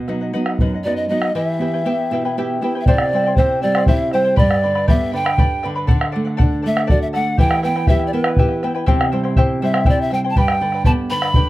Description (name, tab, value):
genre	andean folk, Andean ensemble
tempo	80 BPM (dotted quarters)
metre	6/8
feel	straight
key	E minor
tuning	A4 = 440 Hz
part	charango	accompaniment	0.0-11.5 s	E4 to B5	-24 LUFS	left 3 dB	none
part	nylon-string guitar	accompaniment	0.0-11.5 s	F#2 to G4	-21 LUFS	right 2 dB	none
part	bombo	percussion	0.1-11.5 s	none	-16 LUFS	equal	none
part	polished pan flute	melody	0.8-11.5 s	B4 to B5	-20 LUFS	equal	plate reverb
room	moderate booth ambience, RT60 0.2 s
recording	none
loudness	-15 LUFS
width	side -16 dB against mid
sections	0.0-2.9 A section; 2.9-11.5 B section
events	none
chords	0.0 B; 1.4 Em; 2.9 C; 4.4 G; 5.9 D; 7.4 Em; 8.9 C; 10.4 G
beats	0.59 | 1.35 2.11 | 2.87 3.63 | 4.38 5.13 | 5.88 6.63 | 7.38 8.13 | 8.88 9.62 | 10.37 11.11